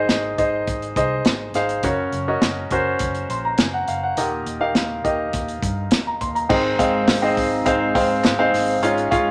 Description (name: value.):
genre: piano-driven pop.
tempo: 103 BPM.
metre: 4/4.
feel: straight.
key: unclear.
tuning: A4 = 440 Hz.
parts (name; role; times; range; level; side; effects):
clear concert grand piano; accompaniment; 0.0-9.3 s; Ab2 to C6; -22 LUFS; equal; none.
vintage muted fingered electric bass; bass; 0.0-9.3 s; Gb1 to Ab2; -34 LUFS; equal; none.
natural country drum kit; drums; 0.1-9.3 s; crash cymbal, hi-hat, kick drum, snare drum; -25 LUFS; equal; none.
chorused pulse-width pad; sustained chords; 6.8-9.3 s; Ab3 to F4; -29 LUFS; equal; none.
group handclap; percussion; 7.1-8.4 s; none; -36 LUFS; equal; none.
room: moderate studio reverb, RT60 0.7 s.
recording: none.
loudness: -21 LUFS.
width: mono.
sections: 0.0-6.5 A section; 6.5-9.3 B section.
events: none.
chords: 0.0 Ab; 1.8 Gb; 4.2 Eb; 6.5 Ab.